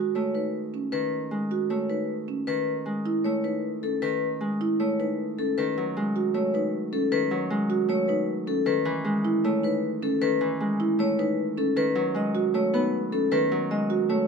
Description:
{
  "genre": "classical, minimalist pattern music",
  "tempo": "155 BPM",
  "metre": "4/4",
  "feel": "straight",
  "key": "unclear",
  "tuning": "A4 = 440 Hz",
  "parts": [
    { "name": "Celtic harp", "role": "accompaniment", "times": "0.0-14.3 s", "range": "D#3 to B3", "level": "-28 LUFS", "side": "equal", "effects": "none" },
    { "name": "marimba with soft mallets", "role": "arpeggios", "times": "0.0-14.1 s", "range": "C#4 to B4", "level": "-28 LUFS", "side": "right 4 dB", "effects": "none" },
    { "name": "vibraphone with medium hard mallets", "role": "melody", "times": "0.2-14.3 s", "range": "A4 to D#5", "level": "-28 LUFS", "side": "left 5 dB", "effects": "none" }
  ],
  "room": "light reverb",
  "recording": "minimal, uncompressed stereo recording",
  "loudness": "-24 LUFS",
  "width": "side -5 dB against mid",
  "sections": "0.0-14.3 A section",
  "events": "none",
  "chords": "0.0 B9; 2.5 Amaj9; 5.6 B9; 8.7 Amaj9; 11.8 B7",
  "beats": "0.15 0.54 | 0.93 1.31 1.70 2.09 | 2.48 2.86 3.25 3.64 | 4.03 4.41 4.80 5.19 | 5.57 5.96 6.35 6.73 | 7.12 7.51 7.89 8.28 | 8.67 9.06 9.44 9.83 | 10.22 10.61 10.99 11.38 | 11.77 12.15 12.54 12.93 | 13.31 13.70 14.09"
}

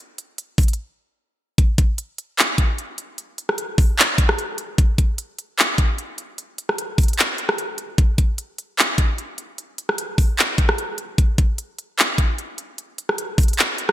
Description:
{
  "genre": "hip hop",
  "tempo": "150 BPM",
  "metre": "4/4",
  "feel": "half-time",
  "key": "none",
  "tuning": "none",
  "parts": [
    { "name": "trap drum kit", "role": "drums", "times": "0.2-13.9 s", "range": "handclaps, hi-hat, kick drum, rim click", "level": "-17 LUFS", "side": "equal", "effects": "gated reverb" }
  ],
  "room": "light reverb",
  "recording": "bright 1980s-style digital production",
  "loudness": "-18 LUFS",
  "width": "side -13 dB against mid",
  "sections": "0.0-1.6 A section; 1.6-13.9 B section",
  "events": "break 0.8-1.6",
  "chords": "none",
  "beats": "0.38 0.78 1.18 | 1.58 1.98 2.38 2.78 | 3.18 3.58 3.98 4.38 | 4.78 5.18 5.58 5.98 | 6.38 6.78 7.18 7.58 | 7.98 8.38 8.78 9.18 | 9.58 9.98 10.38 10.78 | 11.18 11.58 11.98 12.38 | 12.78 13.18 13.58"
}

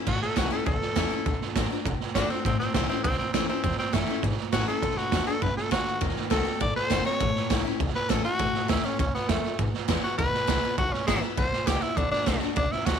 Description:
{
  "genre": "rockabilly",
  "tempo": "202 BPM",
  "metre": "4/4",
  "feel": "straight",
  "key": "A major",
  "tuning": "A4 = 439 Hz",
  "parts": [
    { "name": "picked steel-string acoustic guitar", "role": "accompaniment", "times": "0.0-13.0 s", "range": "E2 to F#4", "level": "-31 LUFS", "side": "left 16 dB", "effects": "none" },
    { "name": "raspy tenor saxophone", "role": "melody", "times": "0.1-13.0 s", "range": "G#3 to D5", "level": "-28 LUFS", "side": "left 1 dB", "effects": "none" },
    { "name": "upright bass", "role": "bass", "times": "0.1-13.0 s", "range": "F#1 to A2", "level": "-31 LUFS", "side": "left 2 dB", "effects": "none" },
    { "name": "raw garage drum kit", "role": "drums", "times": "0.1-12.9 s", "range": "crash cymbal, hi-hat, kick drum, snare drum", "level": "-28 LUFS", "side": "right 6 dB", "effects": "none" }
  ],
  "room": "little or no reverb",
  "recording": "1960s-style stereo with parts hard left and right",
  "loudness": "-24 LUFS",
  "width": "side -7 dB against mid",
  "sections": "0.1-13.0 A section",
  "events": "tenor saxophone solo 0.1-13.0",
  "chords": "0.1 A; 1.3 D; 2.5 A; 4.8 D; 6.0 D#dim7; 7.2 A; 9.6 E; 12.0 D",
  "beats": "| 0.07 0.37 0.67 0.97 | 1.26 1.56 1.86 2.15 | 2.45 2.75 3.05 3.34 | 3.64 3.94 4.24 4.53 | 4.83 5.13 5.42 5.72 | 6.02 6.32 6.61 6.91 | 7.21 7.51 7.80 8.10 | 8.40 8.70 8.99 9.29 | 9.59 9.89 10.19 10.48 | 10.78 11.08 11.38 11.67 | 11.97 12.27 12.57 12.87"
}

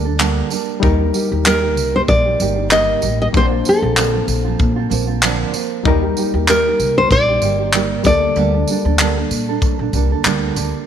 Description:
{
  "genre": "acoustic pop",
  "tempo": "96 BPM",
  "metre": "4/4",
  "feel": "swing 55% on 16ths",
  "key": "unclear",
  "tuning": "A4 = 441 Hz",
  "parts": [
    { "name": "barky reed electric piano", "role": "accompaniment", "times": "0.0-10.9 s", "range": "Gb3 to A5", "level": "-24 LUFS", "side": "left 12 dB", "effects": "none" },
    { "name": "nylon-string guitar", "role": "accompaniment", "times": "0.0-10.9 s", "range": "Bb2 to A4", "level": "-21 LUFS", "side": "right 12 dB", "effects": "none" },
    { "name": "upright bass", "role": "bass", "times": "0.0-10.7 s", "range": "G1 to Bb2", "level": "-20 LUFS", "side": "left 1 dB", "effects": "none" },
    { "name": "modern studio drum kit", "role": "drums", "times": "0.2-10.7 s", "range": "handclaps, kick drum, tambourine", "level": "-19 LUFS", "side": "left 1 dB", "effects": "none" },
    { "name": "tambourine", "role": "percussion", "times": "0.2-10.7 s", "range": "none", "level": "-32 LUFS", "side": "right 13 dB", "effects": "none" },
    { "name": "nylon-string guitar", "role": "melody", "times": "1.5-10.2 s", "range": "A4 to Eb5", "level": "-16 LUFS", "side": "equal", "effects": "none" }
  ],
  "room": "light reverb, small room ambience",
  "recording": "1960s-style stereo with parts hard left and right",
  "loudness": "-14 LUFS",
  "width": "side -9 dB against mid",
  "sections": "0.0-10.9 A section",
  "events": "none",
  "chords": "0.0 Gmadd9/D; 0.8 Eb; 3.3 Bbadd9; 5.9 Eb; 8.1 Gmadd9/D",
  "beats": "0.20 | 0.83 1.46 2.08 2.71 | 3.34 3.97 4.60 5.22 | 5.85 6.48 7.11 7.74 | 8.37 8.99 9.62 10.25"
}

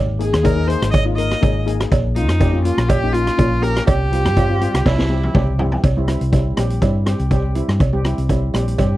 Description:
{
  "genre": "calypso",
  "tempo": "122 BPM",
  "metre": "4/4",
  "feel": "straight",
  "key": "unclear",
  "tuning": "A4 = 440 Hz",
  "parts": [
    { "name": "hollow-body short-scale fingered electric bass", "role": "bass", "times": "0.0-9.0 s", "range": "Ab1 to G2", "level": "-19 LUFS", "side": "equal", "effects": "none" },
    { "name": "bright viola", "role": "melody", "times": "0.2-5.4 s", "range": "Eb4 to Eb5", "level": "-22 LUFS", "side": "right 1 dB", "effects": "none" },
    { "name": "steel pan", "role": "accompaniment", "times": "0.2-8.9 s", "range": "G3 to Bb4", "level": "-23 LUFS", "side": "left 3 dB", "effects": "none" },
    { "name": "street-band drum kit", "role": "drums", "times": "0.2-8.9 s", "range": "hi-hat, kick drum, rim click, snare drum, toms", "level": "-19 LUFS", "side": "equal", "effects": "none" },
    { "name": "cowbell", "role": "percussion", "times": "0.4-8.9 s", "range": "none", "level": "-26 LUFS", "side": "right 8 dB", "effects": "none" }
  ],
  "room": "studio ambience",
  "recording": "dry, close 1970s-style studio recording",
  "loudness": "-15 LUFS",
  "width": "side -16 dB against mid",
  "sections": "0.0-5.8 A section; 5.8-9.0 B section",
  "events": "drum fill 4.9-5.8",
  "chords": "0.0 Absus2; 1.9 Bbm; 3.9 Csus4; 4.9 C",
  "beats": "0.45 0.94 1.43 | 1.92 2.41 2.90 3.39 | 3.88 4.37 4.86 5.35 | 5.84 6.33 6.82 7.31 | 7.80 8.29 8.78"
}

